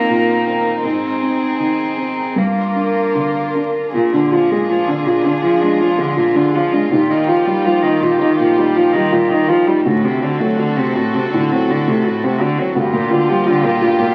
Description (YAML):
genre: neoclassical piano and strings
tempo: 75-85 BPM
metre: 4/4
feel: rubato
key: unclear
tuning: A4 = 440 Hz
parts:
  - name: warm cello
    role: second line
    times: 0.0-14.1 s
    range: G2 to C4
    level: -22 LUFS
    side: equal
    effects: none
  - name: felt-muted upright piano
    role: accompaniment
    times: 0.0-14.1 s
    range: D2 to F#4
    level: -18 LUFS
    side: equal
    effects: none
  - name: warm chamber string section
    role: sustained chords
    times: 0.0-14.1 s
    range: Bb3 to Bb4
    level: -24 LUFS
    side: equal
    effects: none
room: moderate large studio reverb, RT60 1.1 s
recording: very old 78 rpm record, vinyl crackle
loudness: -16 LUFS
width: mono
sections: 0.0-3.9 A section; 3.9-14.1 B section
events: none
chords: 0.0 Cm7/Eb; 0.8 Ab; 2.4 Gm7; 3.9 Bb7; 6.9 Ebadd9; 9.8 D7; 12.8 Gm7/D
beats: 0.10 | 0.84 1.59 2.37 3.15 | 3.94 4.70 5.44 6.17 | 6.91 7.65 8.39 9.12 | 9.85 10.58 11.33 12.05 | 12.76 13.47